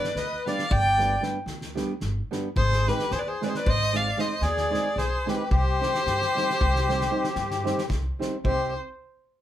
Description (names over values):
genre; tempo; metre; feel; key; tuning
balkan folk, Balkan wedding band; 224 BPM (eighths); 11/8; straight; C harmonic minor; A4 = 440 Hz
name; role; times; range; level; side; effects
warm violin; melody; 0.0-8.7 s; B4 to G5; -27 LUFS; equal; none
accordion; second line; 0.0-8.7 s; G4 to D5; -30 LUFS; left 3 dB; light tremolo tuning
flamenco guitar; accompaniment; 0.0-8.7 s; G3 to C5; -30 LUFS; right 2 dB; none
loose indie drum kit; percussion; 0.0-8.7 s; kick drum, snare drum; -31 LUFS; equal; none
upright bass; bass; 0.2-8.7 s; G1 to G2; -28 LUFS; equal; none
room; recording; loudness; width
moderate small room reverb, RT60 0.5 s; band playing live in one room; -23 LUFS; side -12 dB against mid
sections
0.0-8.4 A section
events
none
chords
0.0 G; 2.6 Ab; 5.5 Cm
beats
0.14 0.41 0.68 0.95 1.22 1.49 1.76 2.03 2.30 | 2.57 2.83 3.10 3.37 3.64 3.91 4.17 4.44 4.71 4.98 5.24 | 5.51 5.78 6.04 6.31 6.58 6.84 7.11 7.38 7.64 7.91 8.18 | 8.44 8.71